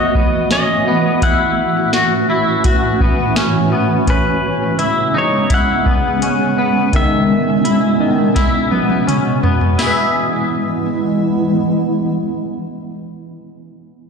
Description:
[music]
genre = dream pop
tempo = 84 BPM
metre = 4/4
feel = straight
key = E major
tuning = A4 = 440 Hz
[part]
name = pedal steel guitar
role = melody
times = 0.0-9.0 s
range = B4 to F#5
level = -20 LUFS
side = left 2 dB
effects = digital delay
[part]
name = granular cloud pad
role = sustained chords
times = 0.0-12.9 s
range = A2 to F#4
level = -17 LUFS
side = right 2 dB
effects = built-in reverb
[part]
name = semi-hollow electric guitar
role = arpeggios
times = 0.0-13.0 s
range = D#3 to E5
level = -18 LUFS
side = left 3 dB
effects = ensemble chorus, digital delay
[part]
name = soft vintage rhythm box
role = drums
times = 0.1-10.0 s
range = hi-hat, kick drum, snare drum, toms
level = -17 LUFS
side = equal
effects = none
[sound]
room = moderate scoring stage reverb, RT60 1.9 s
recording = played on a big sound system in a bare room, large studio reverb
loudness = -13 LUFS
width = side -5 dB against mid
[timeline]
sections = 0.0-9.8 A section; 9.8-12.6 B section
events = drum fill 8.4-9.8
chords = 0.0 B7; 1.2 F#m7/A; 4.1 C#m7; 6.9 Emaj7; 9.8 E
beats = 0.50 | 1.22 1.93 2.64 3.36 | 4.07 4.79 5.50 6.21 | 6.93 7.64 8.36 9.07 | 9.79 10.50 11.21 11.93

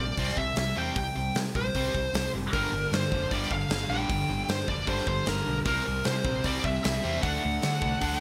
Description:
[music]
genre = hard rock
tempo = 153 BPM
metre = 4/4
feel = straight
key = G dorian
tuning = A4 = 440 Hz
[part]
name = high-gain lead guitar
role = melody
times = 0.0-8.2 s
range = Bb4 to G5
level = -33 LUFS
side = equal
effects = distortion, delay
[part]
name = distorted electric guitar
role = riff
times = 0.0-8.2 s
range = G2 to D4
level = -38 LUFS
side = equal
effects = overdrive
[part]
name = overdriven semi-hollow guitar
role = riff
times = 0.0-8.2 s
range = G2 to D4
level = -38 LUFS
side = equal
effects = none
[part]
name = woody fretless electric bass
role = bass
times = 0.0-8.2 s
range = F1 to D3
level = -36 LUFS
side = equal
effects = none
[part]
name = big rock drum kit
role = drums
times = 0.2-8.2 s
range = hi-hat, kick drum, snare drum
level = -36 LUFS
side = equal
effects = gated reverb
[part]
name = distorted electric guitar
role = riff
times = 2.5-8.2 s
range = G2 to D4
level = -38 LUFS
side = equal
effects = distortion
[sound]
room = moderate plate reverb, RT60 1.1 s, small room ambience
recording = bright 1980s-style digital production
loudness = -28 LUFS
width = mono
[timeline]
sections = 0.0-8.2 A section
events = none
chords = 0.0 C5; 2.5 Gm; 5.7 C; 7.2 D7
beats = 0.18 0.57 | 0.96 1.35 1.75 2.14 | 2.53 2.92 3.32 3.71 | 4.10 4.49 4.88 5.28 | 5.67 6.06 6.45 6.85 | 7.24 7.63 8.02

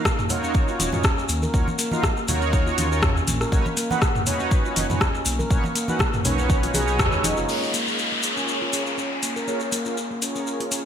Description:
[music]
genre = afro house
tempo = 121 BPM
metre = 4/4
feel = swing 55% on 16ths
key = Bb phrygian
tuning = A4 = 440 Hz
[part]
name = mellow synth brass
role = stabs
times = 0.0-10.8 s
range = C#4 to F#5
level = -27 LUFS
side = right 1 dB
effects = chorus, sidechain pumping, ping-pong delay
[part]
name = deep house drum kit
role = drums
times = 0.1-10.8 s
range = crash cymbal, hi-hat, rim click, toms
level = -25 LUFS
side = left 1 dB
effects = overdrive, gated reverb
[part]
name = electronic kick drum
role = drums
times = 0.1-7.1 s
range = none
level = -22 LUFS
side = equal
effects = none
[part]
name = congas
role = percussion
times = 0.1-7.3 s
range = none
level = -31 LUFS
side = right 1 dB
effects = none
[part]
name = maracas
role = percussion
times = 0.1-10.8 s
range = none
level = -32 LUFS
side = left 3 dB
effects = none
[part]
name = handpan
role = arpeggios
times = 0.2-10.8 s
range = Ab3 to Bb4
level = -29 LUFS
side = equal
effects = sidechain pumping, low-pass filter, ping-pong delay
[part]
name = dark detuned saw bass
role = bass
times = 0.8-7.4 s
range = Eb1 to Eb2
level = -26 LUFS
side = equal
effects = sidechain pumping
[part]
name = downlifter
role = sound effects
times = 7.5-10.9 s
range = none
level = -27 LUFS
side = left 2 dB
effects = none
[sound]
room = moderate lush hall reverb, RT60 1.8 s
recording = bright 1980s-style digital production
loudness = -20 LUFS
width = side -8 dB against mid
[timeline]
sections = 0.0-7.5 A section; 7.5-10.9 B section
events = band accent 7.0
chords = 0.0 Ebm7; 3.5 Badd9; 7.5 Bbm7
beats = 0.05 0.55 1.04 | 1.54 2.04 2.53 3.03 | 3.52 4.02 4.51 5.01 | 5.51 6.00 6.50 7.00 | 7.49 7.99 8.48 8.98 | 9.47 9.97 10.47

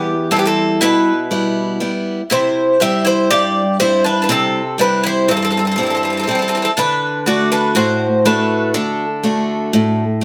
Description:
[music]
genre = greek folk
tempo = 121 BPM (eighths)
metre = 9/8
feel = straight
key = unclear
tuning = A4 = 439 Hz
[part]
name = Greek bouzouki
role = melody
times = 0.0-10.2 s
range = G4 to E5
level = -20 LUFS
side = equal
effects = none
[part]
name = bowl-back mandolin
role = second line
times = 0.0-10.2 s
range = B3 to G4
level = -23 LUFS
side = equal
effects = none
[part]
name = picked steel-string acoustic guitar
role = accompaniment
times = 0.0-10.2 s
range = E2 to B4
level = -20 LUFS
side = equal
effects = none
[sound]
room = wet stone room reverb, RT60 1.0 s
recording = band playing live in one room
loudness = -16 LUFS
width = mono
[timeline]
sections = 0.0-10.2 A section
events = none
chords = 0.0 Em; 2.3 C; 6.8 D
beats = 0.31 0.81 1.31 1.80 | 2.30 2.80 3.30 3.80 4.29 4.79 5.29 5.78 6.28 | 6.77 7.27 7.76 8.26 8.75 9.24 9.74 10.23

